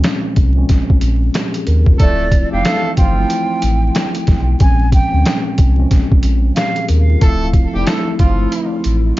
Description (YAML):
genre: hip hop, boom-bap hip-hop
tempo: 92 BPM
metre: 4/4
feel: swing 61% on 16ths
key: D minor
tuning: A4 = 440 Hz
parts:
  - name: mellow tine electric piano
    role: accompaniment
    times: 0.0-9.2 s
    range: D2 to Bb4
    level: -20 LUFS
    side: equal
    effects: medium stereo tremolo, cassette tape, high-pass filter, low-pass filter
  - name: sub bass with octave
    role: bass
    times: 0.0-9.1 s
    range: D1 to Eb2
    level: -14 LUFS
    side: equal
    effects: none
  - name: boom bap sampler-style drum kit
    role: drums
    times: 0.0-9.2 s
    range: hi-hat, kick drum, snare drum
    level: -14 LUFS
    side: equal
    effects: none
  - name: breathy concert flute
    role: melody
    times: 2.0-6.9 s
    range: D5 to Ab5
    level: -22 LUFS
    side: right 2 dB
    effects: high-pass filter, low-pass filter, tape echo
  - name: warm horn section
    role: stabs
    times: 2.0-8.8 s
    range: F3 to A4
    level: -24 LUFS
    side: right 2 dB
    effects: high-pass filter, low-pass filter, tape echo
room: little or no reverb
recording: dark, warm production, vinyl crackle, nothing above 7.5 kHz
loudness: -12 LUFS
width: side -17 dB against mid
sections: 0.0-2.0 A section; 2.0-9.2 B section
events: none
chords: 0.0 Bbm9; 2.0 Dm9; 4.6 Bbm9; 7.2 Dm9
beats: 0.04 0.69 1.35 | 2.00 2.65 3.30 3.96 | 4.61 5.26 5.91 6.56 | 7.22 7.87 8.52 9.17